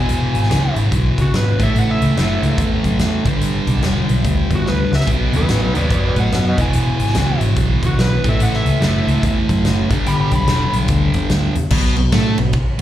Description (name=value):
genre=blues rock power trio and southern rock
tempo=144 BPM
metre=4/4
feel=swing 62% on 8ths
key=unclear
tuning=A4 = 439 Hz
part: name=overdriven slide guitar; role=melody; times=0.0-10.7 s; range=D#4 to B5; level=-24 LUFS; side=left 1 dB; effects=slapback echo
part: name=sludgy distorted guitar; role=riff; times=0.0-12.8 s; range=E2 to B3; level=-19 LUFS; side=right 1 dB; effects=overdrive, slapback echo
part: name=vintage muted picked electric bass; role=bass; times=0.0-12.5 s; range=E1 to A2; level=-18 LUFS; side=equal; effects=none
part: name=huge arena drum kit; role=drums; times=0.1-12.8 s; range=crash cymbal, hi-hat, kick drum, ride cymbal, snare drum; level=-21 LUFS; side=equal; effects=none
room=light reverb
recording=live gig heard through the venue's PA, club reverb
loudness=-14 LUFS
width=side -12 dB against mid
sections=0.0-11.7 A section; 11.7-12.8 B section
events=drum fill 4.7-5.1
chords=0.0 E; 1.5 A; 3.2 G; 5.1 B; 6.5 E; 8.2 A; 9.9 G; 11.7 N.C.